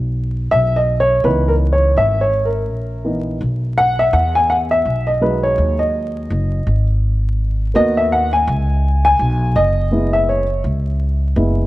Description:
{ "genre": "hip hop", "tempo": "83 BPM", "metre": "4/4", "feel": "swing 59% on 16ths", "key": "C# dorian", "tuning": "A4 = 436 Hz", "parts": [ { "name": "upright bass", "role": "bass", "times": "0.0-11.7 s", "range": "F#1 to E2", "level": "-18 LUFS", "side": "equal", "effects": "none" }, { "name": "dark upright piano", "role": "accompaniment", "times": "0.5-11.7 s", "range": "E3 to G#5", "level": "-16 LUFS", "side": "equal", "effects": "none" } ], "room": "light reverb, small room ambience", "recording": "vinyl crackle", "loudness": "-14 LUFS", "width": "side -17 dB against mid", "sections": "0.0-11.7 A section", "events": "upright piano solo 0.0-11.7", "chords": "0.0 F#7sus4 (rootless); 1.2 C#m9; 4.1 Emaj9; 6.7 G#m9; 9.6 F#9sus4" }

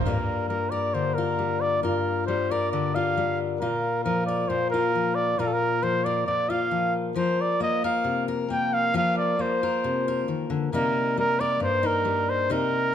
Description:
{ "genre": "folk", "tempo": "135 BPM", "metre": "4/4", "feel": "straight", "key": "unclear", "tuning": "A4 = 440 Hz", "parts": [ { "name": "warm trumpet", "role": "melody", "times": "0.0-12.9 s", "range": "A4 to G5", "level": "-25 LUFS", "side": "right 1 dB", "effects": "slapback echo" }, { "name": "fingerpicked steel-string acoustic guitar", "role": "accompaniment", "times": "0.1-12.9 s", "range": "G2 to Bb4", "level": "-26 LUFS", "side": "left 4 dB", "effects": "none" } ], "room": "moderate large studio reverb, RT60 1.3 s", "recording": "none", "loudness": "-22 LUFS", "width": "side -9 dB against mid", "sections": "0.1-12.9 A section", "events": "none", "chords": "0.1 Gm7; 3.6 Bb5; 7.2 Fsus4; 10.7 Cm7" }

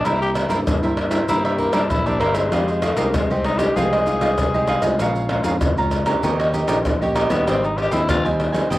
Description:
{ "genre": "samba and choro", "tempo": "97 BPM", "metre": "4/4", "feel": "straight", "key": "C minor", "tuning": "A4 = 440 Hz", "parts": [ { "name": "growling tenor saxophone", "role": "second line", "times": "0.0-8.3 s", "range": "G3 to Ab4", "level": "-23 LUFS", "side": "left 2 dB", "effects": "cassette tape" }, { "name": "cavaquinho", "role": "accompaniment", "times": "0.0-8.8 s", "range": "Eb4 to Bb5", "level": "-23 LUFS", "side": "right 2 dB", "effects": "cassette tape" }, { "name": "nylon-string guitar", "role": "accompaniment", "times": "0.1-8.8 s", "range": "F2 to G4", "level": "-26 LUFS", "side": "equal", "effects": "cassette tape" }, { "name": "picked electric bass", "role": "bass", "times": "0.1-8.8 s", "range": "G1 to G2", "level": "-25 LUFS", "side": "equal", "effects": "none" }, { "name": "maracas, surdo, pandeiro and tamborim", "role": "percussion", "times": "0.1-8.8 s", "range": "none", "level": "-22 LUFS", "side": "left 1 dB", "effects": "none" } ], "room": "moderate spring reverb, RT60 1.3 s, studio reverb", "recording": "home recording on cassette", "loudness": "-17 LUFS", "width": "side -16 dB against mid", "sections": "0.0-8.8 A section", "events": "tenor saxophone solo 0.0-8.8", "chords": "0.0 C7; 2.5 Fm9; 5.0 Bbm7; 6.2 Eb7; 7.5 Abmaj7" }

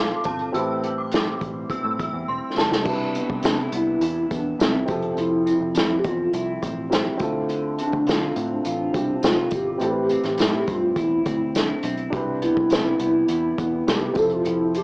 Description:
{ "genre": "indie pop, bedroom pop", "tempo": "104 BPM", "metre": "4/4", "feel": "straight", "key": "C major", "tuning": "A4 = 440 Hz", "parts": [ { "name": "synth chime", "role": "second line", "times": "0.0-2.7 s", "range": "A5 to E6", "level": "-27 LUFS", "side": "right 1 dB", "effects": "ensemble chorus, tremolo, cassette tape, analog delay" }, { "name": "dark upright piano", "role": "accompaniment", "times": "0.0-14.8 s", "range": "C4 to E5", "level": "-29 LUFS", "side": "equal", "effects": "cassette tape" }, { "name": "electric guitar through a small old amp", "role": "accompaniment", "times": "0.0-14.8 s", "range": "A2 to A4", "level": "-29 LUFS", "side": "equal", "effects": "wide subtle chorus, warbly pitch drift, cassette tape" }, { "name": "vintage muted picked electric bass", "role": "bass", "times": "0.0-14.8 s", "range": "E1 to D3", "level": "-32 LUFS", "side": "equal", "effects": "none" }, { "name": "unplugged drum kit", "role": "drums", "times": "0.2-14.8 s", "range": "crash cymbal, hi-hat, kick drum, snare drum", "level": "-24 LUFS", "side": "equal", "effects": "vintage 12-bit sampler grit, cassette tape" }, { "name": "tambourine", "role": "percussion", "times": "2.9-14.8 s", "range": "none", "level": "-42 LUFS", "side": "right 1 dB", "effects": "none" }, { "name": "hollow clarinet-like synth lead", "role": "melody", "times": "3.5-14.8 s", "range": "C4 to A4", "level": "-23 LUFS", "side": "equal", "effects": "ensemble chorus, cassette tape" } ], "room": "moderate booth ambience, RT60 0.2 s", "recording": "home recording on cassette, small speaker sound", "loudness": "-20 LUFS", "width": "side -29 dB against mid", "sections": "0.0-2.9 A section; 2.9-14.8 B section", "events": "drum fill 2.3-2.9", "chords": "0.0 Dm7; 0.5 Am7; 2.9 Cmaj7; 4.9 Fmaj7; 7.2 Dm7; 9.8 Am7; 12.1 Cmaj7; 14.2 Fmaj7" }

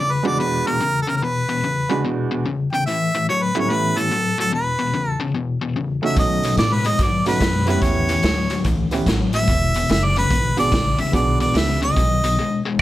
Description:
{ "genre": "electric blues shuffle", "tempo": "145 BPM", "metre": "4/4", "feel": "swing 65% on 8ths", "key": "E mixolydian", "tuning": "A4 = 439 Hz", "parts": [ { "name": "clear harmonica", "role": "melody", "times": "0.0-12.6 s", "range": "A4 to G5", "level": "-21 LUFS", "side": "equal", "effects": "none" }, { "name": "biting overdriven guitar", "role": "riff", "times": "0.0-12.8 s", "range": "E2 to G#3", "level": "-23 LUFS", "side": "left 4 dB", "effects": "harmonic tremolo" }, { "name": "clear upright piano", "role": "accompaniment", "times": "0.2-12.0 s", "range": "E2 to G#4", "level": "-24 LUFS", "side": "right 5 dB", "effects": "none" }, { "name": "upright bass", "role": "bass", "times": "6.2-12.8 s", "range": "E1 to B2", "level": "-23 LUFS", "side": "equal", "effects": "none" }, { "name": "raw garage drum kit", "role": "drums", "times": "6.2-12.8 s", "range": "crash cymbal, hi-hat, kick drum, snare drum", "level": "-22 LUFS", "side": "right 1 dB", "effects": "none" } ], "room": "light reverb", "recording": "none", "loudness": "-17 LUFS", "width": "side -14 dB against mid", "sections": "0.0-12.8 A section", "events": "break 12.4-12.8", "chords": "0.0 E7; 2.9 A7; 4.5 E5; 6.2 B7; 7.8 A7; 9.5 E7; 12.0 B" }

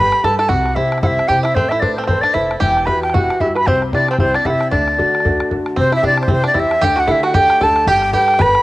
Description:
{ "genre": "celtic folk, Celtic reel", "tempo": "228 BPM", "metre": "4/4", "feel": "swing 58% on 8ths", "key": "unclear", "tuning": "A4 = 439 Hz", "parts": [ { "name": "breathy bright wooden flute", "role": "melody", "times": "0.0-8.6 s", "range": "C5 to B5", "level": "-15 LUFS", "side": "equal", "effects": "none" }, { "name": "bluegrass banjo", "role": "second line", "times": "0.0-8.6 s", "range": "C4 to B4", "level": "-21 LUFS", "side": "right 2 dB", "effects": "cassette tape" }, { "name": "bright upright piano", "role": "accompaniment", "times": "0.0-8.6 s", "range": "C3 to C5", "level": "-22 LUFS", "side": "left 2 dB", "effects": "cassette tape" }, { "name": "upright bass", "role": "bass", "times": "0.0-8.5 s", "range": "E1 to D3", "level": "-23 LUFS", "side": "equal", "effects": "none" }, { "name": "bodhran", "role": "percussion", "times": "0.1-8.6 s", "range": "none", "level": "-21 LUFS", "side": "left 1 dB", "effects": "none" } ], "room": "light reverb, small room ambience", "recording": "home recording on cassette", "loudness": "-13 LUFS", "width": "side -18 dB against mid", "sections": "0.0-5.8 A section; 5.8-8.6 A section", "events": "none", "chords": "0.0 Gadd9; 0.5 C; 1.6 Amadd9; 2.6 Emadd9; 3.7 C; 4.7 D; 5.8 C; 6.8 Dsus4; 7.9 Gadd9" }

